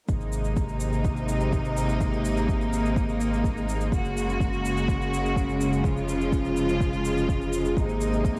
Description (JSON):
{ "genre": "piano and strings electronica", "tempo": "125 BPM", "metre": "4/4", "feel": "straight", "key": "Ab mixolydian", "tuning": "A4 = 439 Hz", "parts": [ { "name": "bright symphonic string section", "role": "sustained chords", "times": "0.1-8.4 s", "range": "C3 to Gb4", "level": "-28 LUFS", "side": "equal", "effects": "sidechain pumping, cassette tape" }, { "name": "warm sub bass", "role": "bass", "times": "0.1-8.4 s", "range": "F1 to Ab1", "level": "-33 LUFS", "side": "equal", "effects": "sidechain pumping" }, { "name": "electronic kick drum", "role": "drums", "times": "0.1-8.3 s", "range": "none", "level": "-30 LUFS", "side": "equal", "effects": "overdrive, cassette tape" }, { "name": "shaker", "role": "drums", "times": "0.1-8.4 s", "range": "none", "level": "-46 LUFS", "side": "equal", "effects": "overdrive, cassette tape" } ], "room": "light reverb", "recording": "home recording on cassette", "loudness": "-26 LUFS", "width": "mono", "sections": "0.1-8.4 A section", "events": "none", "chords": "0.1 Abadd9; 3.9 Gbadd9; 5.8 Db/F; 7.8 Abadd9" }